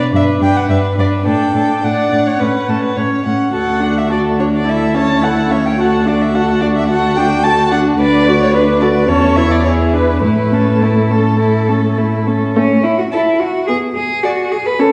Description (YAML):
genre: quick classical-period movement for string quartet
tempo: 107 BPM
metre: 4/4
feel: straight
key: D major, A major from 8.0 s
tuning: A4 = 440 Hz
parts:
  - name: rich violin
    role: melody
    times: 0.0-14.3 s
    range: A4 to A5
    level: -21 LUFS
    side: equal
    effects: none
  - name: rich violin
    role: second line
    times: 0.0-14.3 s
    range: E4 to F#5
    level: -23 LUFS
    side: equal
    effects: none
  - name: warm viola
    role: accompaniment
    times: 0.0-14.9 s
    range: A3 to F#4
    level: -19 LUFS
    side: equal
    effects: none
  - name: rich cello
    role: bass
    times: 0.1-14.9 s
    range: D2 to B4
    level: -18 LUFS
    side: equal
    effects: none
room: wet recital hall reverb, RT60 1.8 s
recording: heard from further back in the room, nothing above 10.7 kHz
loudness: -14 LUFS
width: mono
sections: 0.0-12.6 A section; 12.6-14.9 B section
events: none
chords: 0.1 G; 1.3 D/A; 2.4 A; 3.5 D; 4.7 A/D; 5.8 D; 9.1 A/E; 9.6 E7; 10.2 A; 13.7 G#m/B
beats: 0.13 0.69 | 1.26 1.84 2.41 2.97 | 3.54 4.11 4.67 5.23 | 5.79 6.34 6.90 7.45 | 8.00 8.55 9.09 9.65 | 10.23 10.82 11.39 11.97 | 12.56 13.12 13.68 14.24 | 14.79